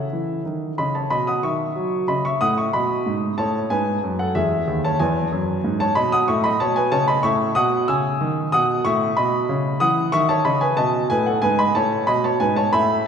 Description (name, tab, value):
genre	classical-period piano sonatina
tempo	93 BPM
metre	4/4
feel	straight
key	unclear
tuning	A4 = 439 Hz
part	warm grand piano	solo	0.0-13.1 s	D#2 to E6	-18 LUFS	equal	none
room	wet church reverb, RT60 3.0 s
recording	recorded in a church or concert hall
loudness	-18 LUFS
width	side -7 dB against mid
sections	0.0-13.1 A section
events	none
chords	0.0 A; 1.1 B; 2.4 B7/A; 3.7 E; 6.3 Amaj9#11; 7.6 B; 8.9 B7/A; 11.4 B13/G#